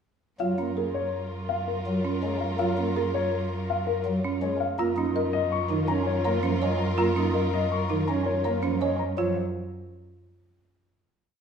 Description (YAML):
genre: classical, minimalist pattern music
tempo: 164 BPM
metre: 6/4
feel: straight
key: F# major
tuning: A4 = 441 Hz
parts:
  - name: dark baby grand piano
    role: melody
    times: 0.4-9.3 s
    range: G#4 to C#6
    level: -30 LUFS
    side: left 6 dB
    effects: none
  - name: pipe organ, flutes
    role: accompaniment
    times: 0.4-9.4 s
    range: D#3 to D#4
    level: -31 LUFS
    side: equal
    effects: none
  - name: warm symphonic string section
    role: sustained chords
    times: 0.4-9.0 s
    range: E#4 to A#4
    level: -34 LUFS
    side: left 1 dB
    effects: none
  - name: folk marimba with medium mallets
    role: arpeggios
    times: 0.4-9.4 s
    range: C#4 to D#5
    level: -30 LUFS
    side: right 6 dB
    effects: none
  - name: rich cello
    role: bass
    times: 0.4-9.4 s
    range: F#2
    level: -31 LUFS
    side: right 1 dB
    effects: none
room: wet recital hall reverb, RT60 1.2 s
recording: heard from further back in the room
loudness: -24 LUFS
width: side -7 dB against mid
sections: 0.4-9.2 A section; 9.2-11.4 final chord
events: none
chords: 0.4 F#maj9; 4.8 A#m/F#; 9.2 F#5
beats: | 0.40 0.77 1.13 1.50 1.87 2.23 | 2.60 2.96 3.33 3.69 4.06 4.43 | 4.79 5.16 5.52 5.89 6.26 6.62 | 6.99 7.35 7.72 8.09 8.45 8.82 | 9.18